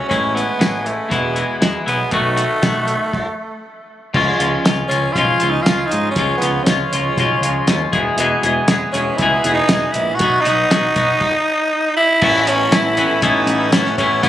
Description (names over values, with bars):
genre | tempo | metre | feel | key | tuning
indie rock | 119 BPM | 4/4 | straight | A lydian | A4 = 439 Hz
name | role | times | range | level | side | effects
growling tenor saxophone | melody | 0.0-14.3 s | A3 to F#4 | -18 LUFS | right 1 dB | tape echo
electric guitar at the edge of break-up | riff | 0.0-14.3 s | E2 to G#4 | -18 LUFS | left 4 dB | none
growling picked electric bass | bass | 0.1-14.3 s | E1 to G#2 | -23 LUFS | right 1 dB | overdrive
cloth-damped thuddy drum kit | drums | 0.1-14.3 s | crash cymbal, hi-hat, kick drum, snare drum, tambourine | -19 LUFS | equal | none
electric guitar through a small old amp | riff | 4.4-14.3 s | E3 to A4 | -26 LUFS | right 8 dB | lush chorus, tape echo
string machine, full ensemble | sustained chords | 12.2-14.3 s | A4 to E6 | -28 LUFS | right 1 dB | phaser, ensemble chorus
room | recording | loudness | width
studio ambience | recorded on a phone in the room, club reverb | -14 LUFS | side -12 dB against mid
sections
0.0-4.1 A section; 4.1-12.2 B section; 12.2-14.3 C section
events
stop 3.1-4.1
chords
0.1 Amaj7; 1.1 E; 2.1 B7; 4.1 C#; 7.9 E; 10.2 B; 12.2 Aadd9